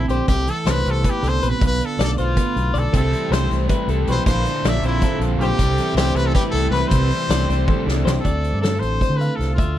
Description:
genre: math rock and midwest emo.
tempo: 316 BPM (eighths).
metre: 7/8.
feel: straight.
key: C major.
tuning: A4 = 439 Hz.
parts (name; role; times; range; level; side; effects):
brilliant trumpet; melody; 0.0-9.8 s; E4 to E5; -24 LUFS; left 1 dB; slapback echo.
twelve-string electric guitar; accompaniment; 0.0-9.8 s; Bb2 to F4; -26 LUFS; right 5 dB; none.
twelve-string electric guitar; arpeggios; 0.0-9.8 s; A4 to F5; -28 LUFS; left 7 dB; spring reverb.
overdriven fingered electric bass; bass; 0.0-9.8 s; A1 to D3; -21 LUFS; equal; none.
loose indie drum kit; drums; 0.1-9.7 s; hi-hat, kick drum, snare drum, toms; -22 LUFS; equal; none.
cranked stack guitar; riff; 2.9-8.2 s; Bb2 to E4; -26 LUFS; equal; overdrive.
room: little or no reverb.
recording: none.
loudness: -17 LUFS.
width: side -12 dB against mid.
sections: 0.0-8.2 A section; 8.2-9.8 B section.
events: drum fill 7.7-8.2.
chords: 0.0 Bbmaj9#11 (rootless); 1.6 Bm7b5; 2.9 Cmaj13; 4.3 Bbmaj9#11; 5.6 Cmaj13; 8.2 Dm9.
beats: 0.09 | 0.28 0.47 0.66 0.85 1.04 1.23 1.42 | 1.61 1.80 1.99 2.18 2.37 2.56 2.75 | 2.94 3.13 3.32 3.51 3.69 3.88 4.07 | 4.26 4.45 4.64 4.83 5.02 5.21 5.40 | 5.59 5.78 5.97 6.16 6.35 6.54 6.73 | 6.92 7.11 7.30 7.49 7.68 7.87 8.06 | 8.25 8.44 8.63 8.82 9.01 9.20 9.39 | 9.58 9.77.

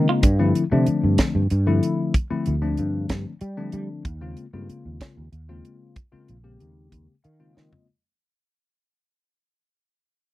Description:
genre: electric jazz fusion.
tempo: 63 BPM (dotted quarters).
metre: 6/8.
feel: straight.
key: unclear.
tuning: A4 = 440 Hz.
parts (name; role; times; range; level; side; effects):
tine electric piano; accompaniment; 0.0-7.9 s; Db3 to F5; -24 LUFS; left 4 dB; analog chorus.
sustaining fretless electric bass; bass; 0.0-7.7 s; Bb1 to G3; -23 LUFS; right 1 dB; analog chorus.
tight funk drum kit; drums; 0.2-7.9 s; hi-hat, kick drum, snare drum, toms; -21 LUFS; right 1 dB; none.
room: little or no reverb.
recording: dry, close 1970s-style studio recording.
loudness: -20 LUFS.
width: side -16 dB against mid.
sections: 0.0-7.9 A section.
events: fade-out 0.0-7.9; tine electric piano fill 6.9-7.9; drum fill 7.6-7.9.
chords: 0.2 G13sus4; 4.1 Eb13sus4.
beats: | 0.24 1.19 | 2.15 3.10 | 4.06 5.01 | 5.97 6.92.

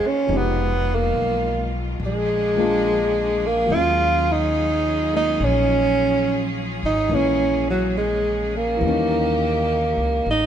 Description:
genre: jazz ballad.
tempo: 70 BPM.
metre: 4/4.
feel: swing 67% on 8ths.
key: Eb minor.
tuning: A4 = 440 Hz.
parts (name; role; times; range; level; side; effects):
breathy tenor saxophone; melody; 0.0-10.5 s; Gb3 to F4; -20 LUFS; right 2 dB; none.
warm grand piano; accompaniment; 0.0-10.5 s; Cb3 to C5; -28 LUFS; left 4 dB; none.
clear studio cello section; sustained chords; 0.0-10.5 s; Cb3 to C5; -30 LUFS; left 1 dB; none.
upright bass; bass; 0.0-10.5 s; F1 to Eb2; -26 LUFS; left 1 dB; none.
room: moderate stone room reverb, RT60 1.6 s.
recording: band playing live in one room.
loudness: -18 LUFS.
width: side -9 dB against mid.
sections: 0.0-10.5 A section.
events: none.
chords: 0.3 Fm7b5; 2.0 Bb7; 3.7 Ebm11; 7.1 Bbm7b5; 8.8 Eb7b9.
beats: | 0.29 1.14 2.00 2.85 | 3.71 4.56 5.41 6.27 | 7.12 7.97 8.83 9.69.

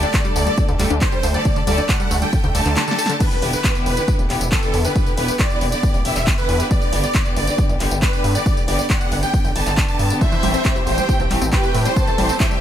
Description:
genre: uplifting trance.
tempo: 137 BPM.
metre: 4/4.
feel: straight.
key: E minor.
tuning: A4 = 440 Hz.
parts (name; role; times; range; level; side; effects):
supersaw chords; melody; 0.0-12.6 s; A4 to A5; -24 LUFS; equal; wide subtle chorus, sidechain pumping, ping-pong delay.
warm studio string section; sustained chords; 0.0-12.6 s; D3 to A4; -24 LUFS; left 1 dB; sidechain pumping.
tight sequenced synth; arpeggios; 0.0-3.1, 10.2-12.6 s; D3 to A4; -26 LUFS; equal; chorus, sidechain pumping, ping-pong delay.
gritty driven synth bass; bass; 0.0-12.3 s; E1 to A2; -22 LUFS; equal; sidechain pumping.
punchy analog drum machine; drums; 0.0-12.6 s; crash cymbal, handclaps, hi-hat, snare drum, tambourine; -25 LUFS; left 1 dB; none.
electronic kick drum; drums; 0.1-12.5 s; none; -19 LUFS; equal; none.
dark studio violin section; second line; 10.2-12.6 s; E4 to A5; -24 LUFS; right 1 dB; analog delay.
room: light reverb, digital ambience.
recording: none.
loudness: -16 LUFS.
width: side -10 dB against mid.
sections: 0.0-3.2 A section; 3.2-12.6 A section.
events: drop 0.0-3.2, 3.2-12.6; drum fill 2.8-3.2.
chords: 0.0 Dsus4; 3.2 Em7; 6.7 G; 10.2 Am7.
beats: 0.14 0.58 1.01 | 1.45 1.89 2.33 2.77 | 3.20 3.64 4.08 4.52 | 4.96 5.39 5.83 6.27 | 6.71 7.15 7.58 8.02 | 8.46 8.90 9.34 9.77 | 10.21 10.65 11.09 11.53 | 11.96 12.40.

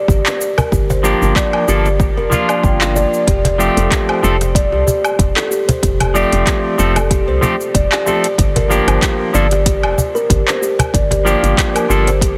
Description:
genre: organic downtempo.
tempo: 94 BPM.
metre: 4/4.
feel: swing 54% on 16ths.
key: G minor.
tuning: A4 = 439 Hz.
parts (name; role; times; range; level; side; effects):
kalimba; arpeggios; 0.1-12.4 s; D4 to G5; -20 LUFS; equal; digital delay.
woody FM bass; bass; 0.1-12.4 s; F1 to C2; -19 LUFS; equal; sidechain pumping.
deep house drum kit; drums; 0.1-12.4 s; handclaps, hi-hat, shaker, woodblock; -22 LUFS; equal; overdrive.
electronic kick drum; drums; 0.1-12.4 s; none; -19 LUFS; equal; overdrive.
cajon; percussion; 0.6-12.2 s; none; -20 LUFS; equal; none.
clean electric guitar; accompaniment; 1.0-12.1 s; F3 to A4; -21 LUFS; equal; sidechain pumping, digital delay.
room: light reverb, digital ambience.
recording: heavily compressed radio sound, multiband compression.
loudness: -14 LUFS.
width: mono.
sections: 0.0-12.4 A section.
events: none.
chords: 0.0 Gm7; 3.3 Fadd9; 8.4 Gm7.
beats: 0.09 | 0.73 1.36 2.00 2.64 | 3.28 3.92 4.56 5.19 | 5.83 6.47 7.11 7.75 | 8.39 9.02 9.66 10.30 | 10.94 11.58 12.21.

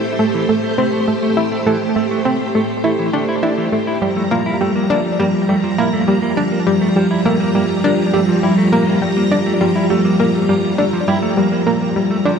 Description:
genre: ambient, sequencer-driven space music.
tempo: 102 BPM.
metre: 4/4.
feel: straight.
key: unclear.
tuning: A4 = 441 Hz.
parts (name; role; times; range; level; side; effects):
string machine, full ensemble; sustained chords; 0.0-12.4 s; F3 to Bb5; -17 LUFS; equal; ensemble chorus, shimmer reverb.
analog pluck; riff; 0.0-12.4 s; G3 to E4; -18 LUFS; equal; chorus, vintage 12-bit sampler grit, tape echo, shimmer reverb.
clean electric guitar; arpeggios; 0.2-12.4 s; E3 to E4; -23 LUFS; right 2 dB; auto-pan, tape echo, shimmer reverb.
room: wet plate reverb, RT60 2.4 s.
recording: dark, warm production.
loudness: -14 LUFS.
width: side -6 dB against mid.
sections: 0.0-12.4 A section.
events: none.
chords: 0.0 Am7; 4.0 Gm7.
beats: 0.49 1.08 | 1.67 2.25 2.84 3.43 | 4.02 4.61 5.20 5.78 | 6.37 6.96 7.55 8.14 | 8.72 9.31 9.90 10.49 | 11.08 11.67 12.26.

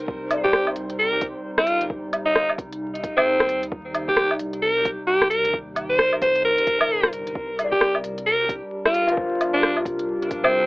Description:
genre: future garage.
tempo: 132 BPM.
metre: 4/4.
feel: swing 60% on 16ths.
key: C minor.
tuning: A4 = 438 Hz.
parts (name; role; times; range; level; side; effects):
dark upright piano; accompaniment; 0.0-10.7 s; F4 to D5; -28 LUFS; left 2 dB; sidechain pumping, cassette tape, analog delay.
warbly tape-like pad; sustained chords; 0.0-10.7 s; C3 to Bb4; -33 LUFS; equal; chorus, built-in reverb, vintage 12-bit sampler grit, sidechain pumping, cassette tape.
dark detuned saw bass; bass; 0.1-10.7 s; G1 to Eb2; -42 LUFS; equal; tube saturation, sidechain pumping.
electronic kick drum; drums; 0.1-10.4 s; none; -31 LUFS; equal; cassette tape.
organic electronic drum kit; drums; 0.3-10.5 s; hi-hat, rim click, woodblock; -22 LUFS; equal; cassette tape.
raspy alto saxophone; melody; 0.4-10.7 s; C4 to C5; -20 LUFS; equal; cassette tape, analog delay.
room: moderate booth ambience, RT60 0.2 s.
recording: home recording on cassette, vinyl crackle, telephone sound.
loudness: -19 LUFS.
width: side -26 dB against mid.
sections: 0.1-10.7 A section.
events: none.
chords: 0.1 Cm; 7.4 Gm7.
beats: | 0.08 0.54 0.99 1.45 | 1.90 2.35 2.81 3.26 | 3.72 4.17 4.63 5.08 | 5.54 5.99 6.45 6.90 | 7.36 7.81 8.26 8.72 | 9.17 9.63 10.08 10.54.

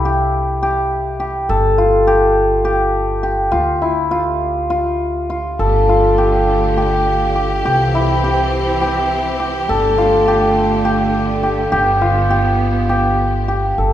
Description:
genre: contemporary instrumental, chamber music in an uneven meter.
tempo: 206 BPM (eighths).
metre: 7/8.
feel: straight.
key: G mixolydian.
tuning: A4 = 440 Hz.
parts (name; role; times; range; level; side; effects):
cimbalom; arpeggios; 0.0-13.9 s; E4 to A4; -15 LUFS; left 1 dB; none.
upright bass; bass; 0.0-13.9 s; G1 to D2; -20 LUFS; right 1 dB; none.
bright studio string section; sustained chords; 5.6-13.8 s; D3 to G4; -21 LUFS; right 2 dB; none.
room: moderate concert hall reverb, RT60 2.5 s.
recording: minimal, uncompressed stereo recording.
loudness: -13 LUFS.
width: side -11 dB against mid.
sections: 0.0-13.8 A section.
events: none.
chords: 0.0 C; 1.5 Gsus2; 3.5 Dm; 5.6 Gsus2; 7.7 C; 9.7 Gsus2; 11.7 G.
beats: 0.06 0.34 0.63 0.92 1.21 | 1.50 1.78 2.07 2.36 2.65 2.95 3.24 | 3.53 3.82 4.11 4.41 4.71 5.00 5.30 | 5.60 5.89 6.18 6.48 6.77 7.07 7.36 | 7.65 7.95 8.24 8.53 8.82 9.12 9.41 | 9.70 9.99 10.28 10.57 10.86 11.15 11.44 | 11.73 12.02 12.31 12.60 12.90 13.19 13.49 | 13.79.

